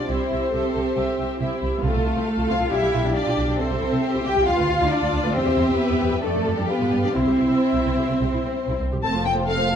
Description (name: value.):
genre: quick classical-period movement for string orchestra.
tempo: 136 BPM.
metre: 4/4.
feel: rubato.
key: C major.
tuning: A4 = 443 Hz.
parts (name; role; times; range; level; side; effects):
warm symphonic violin section; melody; 0.0-9.8 s; G4 to A5; -27 LUFS; left 3 dB; none.
warm symphonic violin section; second line; 0.0-9.8 s; E4 to C5; -28 LUFS; left 2 dB; none.
clear symphonic viola section; accompaniment; 0.0-9.8 s; F3 to F5; -28 LUFS; right 1 dB; none.
warm symphonic cello section; bass; 0.0-9.8 s; F2 to G4; -24 LUFS; right 1 dB; none.
rich symphonic double bass section; bass; 0.1-9.8 s; F1 to G2; -26 LUFS; right 2 dB; none.
room: wet recital hall reverb, RT60 1.5 s.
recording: dark, warm production.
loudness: -19 LUFS.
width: side -8 dB against mid.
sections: 0.0-9.0 A section.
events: none.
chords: 0.1 C; 1.8 F/C; 2.7 G7/B; 3.6 C; 4.5 Bdim/D (rootless); 5.3 C/E; 6.2 Dm/F; 6.7 G7; 7.2 C; 9.0 F.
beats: | 0.09 0.53 0.96 1.40 | 1.83 2.27 2.71 3.15 | 3.59 4.03 4.47 4.91 | 5.35 5.79 6.23 6.69 | 7.15 7.63 8.10 8.57 | 9.03 9.48.